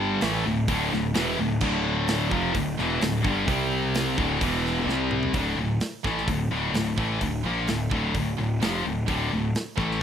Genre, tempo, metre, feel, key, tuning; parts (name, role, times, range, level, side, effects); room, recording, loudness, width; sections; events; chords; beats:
heavy metal; 129 BPM; 4/4; straight; D minor; A4 = 440 Hz
fuzz guitar; riff; 0.0-5.3 s; D2 to C4; -32 LUFS; right 4 dB; distortion
heavy high-gain guitar; riff; 0.0-10.0 s; D2 to C4; -31 LUFS; right 14 dB; distortion
scooped high-gain guitar; riff; 0.0-10.0 s; D2 to C4; -26 LUFS; left 5 dB; distortion
fuzz picked electric bass; bass; 0.0-10.0 s; D1 to C2; -30 LUFS; right 1 dB; overdrive
tight metal drum kit; drums; 0.2-10.0 s; crash cymbal, hi-hat, kick drum, snare drum, toms; -31 LUFS; right 1 dB
small room ambience; rough home demo mix; -23 LUFS; side -8 dB against mid
0.0-5.3 A section; 5.3-10.0 B section
drum fill 4.9-5.3
0.2 Dm; 3.5 C5; 4.2 D5; 4.4 E5; 4.9 C5; 5.3 Dm
0.22 0.69 1.15 | 1.62 2.08 2.55 3.02 | 3.48 3.95 4.41 4.88 | 5.34 5.81 6.28 6.74 | 7.21 7.68 8.14 8.61 | 9.08 9.54 10.01